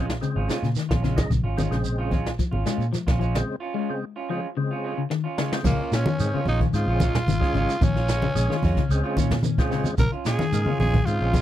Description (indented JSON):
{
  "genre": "afrobeat",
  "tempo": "111 BPM",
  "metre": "4/4",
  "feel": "straight",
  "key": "Bb minor",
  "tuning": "A4 = 440 Hz",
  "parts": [
    { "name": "percussive tonewheel organ", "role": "accompaniment", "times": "0.0-11.3 s", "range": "Db3 to Eb4", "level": "-30 LUFS", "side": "left 1 dB", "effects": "slow rotary speaker, overdrive, chorus vibrato" },
    { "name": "semi-hollow electric guitar", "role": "arpeggios", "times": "0.0-11.4 s", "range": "Db3 to Ab3", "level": "-29 LUFS", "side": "left 7 dB", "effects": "spring reverb" },
    { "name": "electric guitar through a small old amp", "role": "stabs", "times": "0.0-11.4 s", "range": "Ab3 to F4", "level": "-32 LUFS", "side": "right 6 dB", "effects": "none" },
    { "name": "vintage muted fingered electric bass", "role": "bass", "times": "0.0-11.4 s", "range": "Ab1 to Bb2", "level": "-25 LUFS", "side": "equal", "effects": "none" },
    { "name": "jazz brush drum kit", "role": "drums", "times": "0.1-11.4 s", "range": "crash cymbal, hi-hat, kick drum, snare drum", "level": "-26 LUFS", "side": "equal", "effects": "none" },
    { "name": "shekere", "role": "percussion", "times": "0.2-11.4 s", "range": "none", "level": "-34 LUFS", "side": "right 6 dB", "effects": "none" },
    { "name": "congas", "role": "percussion", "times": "0.9-11.4 s", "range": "none", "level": "-28 LUFS", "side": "right 1 dB", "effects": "none" },
    { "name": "growling tenor saxophone", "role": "melody", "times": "5.7-11.4 s", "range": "Bb3 to Bb4", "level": "-29 LUFS", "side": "equal", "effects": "tape echo" }
  ],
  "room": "little or no reverb",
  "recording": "dry, close 1970s-style studio recording",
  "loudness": "-21 LUFS",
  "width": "side -12 dB against mid",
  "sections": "0.0-5.6 A section; 5.6-11.4 B section",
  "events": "break 3.5-5.6; drum fill 5.1-5.6",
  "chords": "0.0 Bbm7"
}